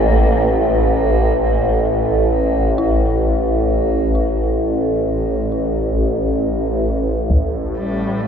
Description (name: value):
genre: dark ambient drone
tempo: free time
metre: none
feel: none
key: unclear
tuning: A4 = 440 Hz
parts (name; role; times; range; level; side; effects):
- dark detuned synth bell; arpeggios; 0.0-8.3 s; E4; -30 LUFS; equal; chorus, ping-pong delay
- swarming drone; drone; 0.0-8.3 s; A1 to A2; -15 LUFS; equal; built-in reverb
- deep dark ambient pad; sustained chords; 7.3-8.3 s; none; barely audible; none; none
- taiko ensemble; percussion; 7.3-7.5 s; none; -17 LUFS; equal; low-pass filter on perc
- dark cello; melody; 7.8-8.3 s; G3 to A3; -28 LUFS; left 1 dB; ping-pong delay
room: wet huge ambient reverb, RT60 8.1 s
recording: nothing above 7.7 kHz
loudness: -15 LUFS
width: side -7 dB against mid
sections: 0.0-7.3 A section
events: fade-out on synth bell 0.0-7.3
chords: 0.0 A5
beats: free time